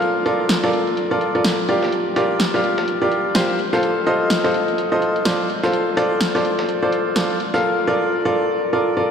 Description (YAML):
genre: piano house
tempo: 126 BPM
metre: 4/4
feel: swing 59% on 16ths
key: unclear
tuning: A4 = 441 Hz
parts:
  - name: clear upright piano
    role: riff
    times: 0.0-9.1 s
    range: F4 to F5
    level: -17 LUFS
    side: equal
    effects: tape echo
  - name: breakbeat sampler-style drum kit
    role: drums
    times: 0.0-7.6 s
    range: hi-hat, snare drum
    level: -34 LUFS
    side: equal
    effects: none
  - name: electronic snare drum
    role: drums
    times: 0.5-7.3 s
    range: none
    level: -24 LUFS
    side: equal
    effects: none
room: wet cathedral reverb, RT60 5.3 s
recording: dreamy mix soaked in reverb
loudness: -17 LUFS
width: side -7 dB against mid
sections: 0.0-9.1 A section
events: none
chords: 0.0 Bbmaj7; 1.9 Gm7; 3.8 F7; 5.7 Dm7; 7.6 Bbmaj7